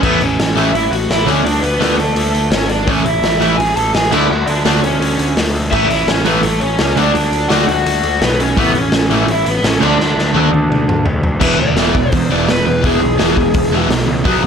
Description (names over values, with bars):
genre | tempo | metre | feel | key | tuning
punk rock | 169 BPM | 4/4 | straight | E mixolydian | A4 = 440 Hz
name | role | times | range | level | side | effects
raw garage guitar | melody | 0.0-13.9 s | A3 to A5 | -17 LUFS | equal | overdrive, tape echo
overdriven electric guitar | riff | 0.0-14.5 s | E2 to D4 | -19 LUFS | left 12 dB | none
sludgy distorted guitar | riff | 0.0-14.5 s | E2 to D4 | -18 LUFS | right 11 dB | overdrive
fuzz picked electric bass | bass | 0.0-14.5 s | E1 to E2 | -18 LUFS | left 1 dB | overdrive
raw garage drum kit | drums | 0.0-14.3 s | crash cymbal, hi-hat, kick drum, snare drum, toms | -17 LUFS | left 1 dB | none
room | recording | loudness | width
light reverb | none | -12 LUFS | side -7 dB against mid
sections
0.0-11.4 A section; 11.4-14.5 B section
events
drum fill 10.0-11.4; overdriven electric guitar solo 11.4-14.5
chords
0.0 A; 1.3 D5; 2.9 A; 4.1 D; 5.7 A; 7.0 D; 8.6 A; 9.8 D5; 11.4 E